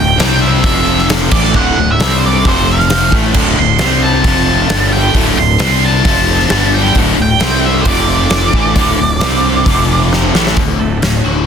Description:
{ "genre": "quiet-loud alternative rock", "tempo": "133 BPM", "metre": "4/4", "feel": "straight", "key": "unclear", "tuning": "A4 = 438 Hz", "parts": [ { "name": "octave-fuzz lead guitar", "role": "melody", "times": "0.0-10.1 s", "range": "C5 to C6", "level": "-16 LUFS", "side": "right 2 dB", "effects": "distortion" }, { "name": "tonewheel organ", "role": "sustained chords", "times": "0.0-10.6 s", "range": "F3 to D5", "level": "-28 LUFS", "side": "equal", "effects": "none" }, { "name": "biting overdriven guitar", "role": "riff", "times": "0.0-11.5 s", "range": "D2 to C4", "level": "-18 LUFS", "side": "left 10 dB", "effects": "phaser" }, { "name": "heavy high-gain guitar", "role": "riff", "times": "0.0-10.6 s", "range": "D2 to C4", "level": "-18 LUFS", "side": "equal", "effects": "distortion" }, { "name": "raw garage guitar", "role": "riff", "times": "0.0-10.6 s", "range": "D2 to C4", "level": "-20 LUFS", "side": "right 16 dB", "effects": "overdrive, harmonic tremolo" }, { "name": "fuzz fingered electric bass", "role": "bass", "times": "0.0-11.4 s", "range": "D1 to C2", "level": "-16 LUFS", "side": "equal", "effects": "overdrive" }, { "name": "huge arena drum kit", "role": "drums", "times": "0.2-11.1 s", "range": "crash cymbal, hi-hat, kick drum, snare drum", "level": "-15 LUFS", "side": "equal", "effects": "none" }, { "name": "twelve-string electric guitar", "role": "arpeggios", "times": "10.6-11.5 s", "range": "D2 to F#4", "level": "-21 LUFS", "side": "right 6 dB", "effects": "none" } ], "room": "little or no reverb", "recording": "dense, heavily limited modern master", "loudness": "-9 LUFS", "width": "side -7 dB against mid", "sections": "0.0-10.6 A section", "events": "drum fill 10.1-10.6", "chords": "0.2 C5; 0.6 F5; 1.3 D; 2.0 C5; 2.4 F5; 3.1 D; 3.8 C5; 4.2 F5; 4.7 G5; 5.2 D; 5.6 C5; 6.1 F5; 6.5 G5; 7.0 D; 7.4 C5; 7.9 F5; 8.5 D; 9.2 C5; 9.7 F5; 10.3 D; 10.6 Dmaj7" }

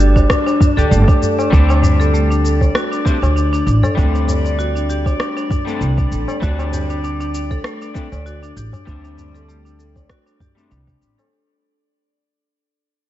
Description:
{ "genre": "organic downtempo", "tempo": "98 BPM", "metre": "4/4", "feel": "swing 55% on 16ths", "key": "unclear", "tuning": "A4 = 439 Hz", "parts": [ { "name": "breathy bright low ney", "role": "melody", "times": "0.0-0.9 s", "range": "D5", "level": "-29 LUFS", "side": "left 1 dB", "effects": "tape echo" }, { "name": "semi-hollow electric guitar", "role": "accompaniment", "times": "0.0-11.3 s", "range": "G3 to A4", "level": "-26 LUFS", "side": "left 3 dB", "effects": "analog chorus, sidechain pumping, low-pass filter, tape echo" }, { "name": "marimba with medium hard mallets", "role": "arpeggios", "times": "0.0-11.3 s", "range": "A3 to D5", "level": "-21 LUFS", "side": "left 1 dB", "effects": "tape echo" }, { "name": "upright bass", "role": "bass", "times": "0.0-11.1 s", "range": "G1 to D2", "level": "-16 LUFS", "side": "equal", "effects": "sidechain pumping" }, { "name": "electronic shaker and rim click", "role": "drums", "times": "0.0-11.3 s", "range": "none", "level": "-25 LUFS", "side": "equal", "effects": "overdrive, studio reverb" }, { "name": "drifting glass-harmonics texture", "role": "texture", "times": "0.0-11.3 s", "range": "D4 to D5", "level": "-28 LUFS", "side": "equal", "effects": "chorus, built-in reverb" }, { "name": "electronic kick drum", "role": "drums", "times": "0.2-11.0 s", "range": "none", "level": "-16 LUFS", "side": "equal", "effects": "studio reverb" }, { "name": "tabla", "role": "percussion", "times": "0.2-11.3 s", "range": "none", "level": "-24 LUFS", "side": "left 2 dB", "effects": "none" } ], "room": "light reverb", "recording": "dark, warm production, nothing above 7.7 kHz", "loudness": "-14 LUFS", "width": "side -13 dB against mid", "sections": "0.0-1.5 A section; 1.5-11.3 B section", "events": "fade-out 1.5-11.3; filter sweep on clean electric guitar 1.5-11.3", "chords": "0.0 Gsus2; 1.5 D7sus4" }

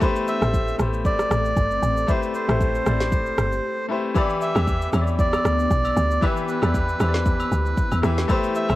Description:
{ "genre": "amapiano", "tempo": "116 BPM", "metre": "4/4", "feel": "swing 55% on 16ths", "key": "unclear", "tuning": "A4 = 440 Hz", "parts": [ { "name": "bright grand piano", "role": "accompaniment", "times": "0.0-8.8 s", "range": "E3 to E5", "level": "-26 LUFS", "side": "left 3 dB", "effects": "none" }, { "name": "glassy FM pad", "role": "sustained chords", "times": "0.1-8.8 s", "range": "E3 to G4", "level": "-31 LUFS", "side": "left 1 dB", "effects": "ensemble chorus, built-in reverb, sidechain pumping" }, { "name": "deep house drum kit", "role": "drums", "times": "0.0-8.8 s", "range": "kick drum, rim click, shaker, snare drum", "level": "-24 LUFS", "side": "equal", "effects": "none" }, { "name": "melodica", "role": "melody", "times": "0.3-8.8 s", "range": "B4 to E5", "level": "-26 LUFS", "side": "right 1 dB", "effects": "digital delay" }, { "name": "woody log drum bass", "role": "bass", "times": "0.4-8.8 s", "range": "G1 to E2", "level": "-23 LUFS", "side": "equal", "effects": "none" }, { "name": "agogo bells", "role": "percussion", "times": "4.2-8.8 s", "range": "none", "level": "-34 LUFS", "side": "equal", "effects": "none" } ], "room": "moderate small room reverb, RT60 0.6 s", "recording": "worn, warbling old tape, cassette tape, warbly pitch drift", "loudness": "-19 LUFS", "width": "side -16 dB against mid", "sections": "0.0-8.8 A section", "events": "break 3.6-4.2", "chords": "0.0 Am9; 4.2 Em7" }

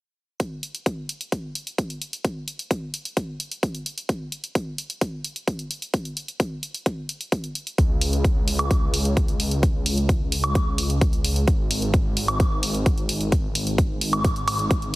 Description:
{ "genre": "EDM, festival progressive house", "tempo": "130 BPM", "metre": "4/4", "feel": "straight", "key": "unclear", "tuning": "A4 = 440 Hz", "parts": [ { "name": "electronic hi-hat and woodblock", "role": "drums", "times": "0.4-14.9 s", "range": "none", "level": "-27 LUFS", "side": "right 1 dB", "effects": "none" }, { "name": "electronic kick drum", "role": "drums", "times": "0.4-14.8 s", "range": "none", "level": "-22 LUFS", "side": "equal", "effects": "high-pass filter on kick" }, { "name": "wide detuned saw bass", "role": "bass", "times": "7.8-15.0 s", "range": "G#1 to C#2", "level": "-25 LUFS", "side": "equal", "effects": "chorus, sidechain pumping" } ], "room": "light reverb", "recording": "heavily compressed radio sound", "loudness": "-22 LUFS", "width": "side -19 dB against mid", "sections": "0.4-7.8 A section; 7.8-15.0 B section", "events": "build-up 7.8-15.0", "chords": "none" }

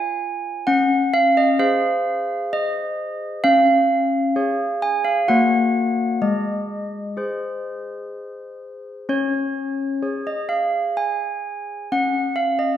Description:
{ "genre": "classical, tune for handbells", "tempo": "64 BPM", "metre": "3/4", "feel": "straight", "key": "Db major", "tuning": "A4 = 435 Hz", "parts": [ { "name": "handbells", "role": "solo", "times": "0.0-12.8 s", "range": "Ab3 to Ab5", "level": "-19 LUFS", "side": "equal", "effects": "none" } ], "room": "wet recital hall reverb, RT60 1.5 s", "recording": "heard from further back in the room", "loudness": "-18 LUFS", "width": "side -10 dB against mid", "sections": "0.0-12.8 A section", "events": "none", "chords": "0.0 Db; 0.7 Ab/Db; 3.4 Db; 5.3 Gb/Bb; 6.2 Ab; 9.1 Db5; 11.9 N.C." }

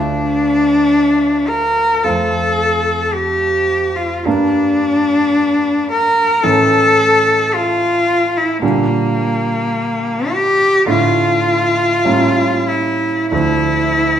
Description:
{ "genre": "classical, romantic duo for cello and grand piano", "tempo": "45-57 BPM", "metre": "4/4", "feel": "rubato", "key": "D minor", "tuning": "A4 = 436 Hz", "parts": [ { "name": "rich cello", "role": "melody", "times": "0.0-14.2 s", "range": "Bb3 to Bb4", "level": "-13 LUFS", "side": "left 1 dB", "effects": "none" }, { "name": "clear concert grand piano", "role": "accompaniment", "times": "0.0-14.2 s", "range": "D2 to F4", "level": "-19 LUFS", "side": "right 3 dB", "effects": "none" } ], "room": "wet recital hall reverb, RT60 1.3 s", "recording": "minimal, uncompressed stereo recording", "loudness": "-12 LUFS", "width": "side -9 dB against mid", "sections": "0.0-14.2 A section", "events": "none", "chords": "0.0 Dm; 2.0 F; 4.3 Gm; 6.4 A; 8.6 Gm/Bb; 10.9 Dm/A; 12.0 A7b9; 13.3 Dm" }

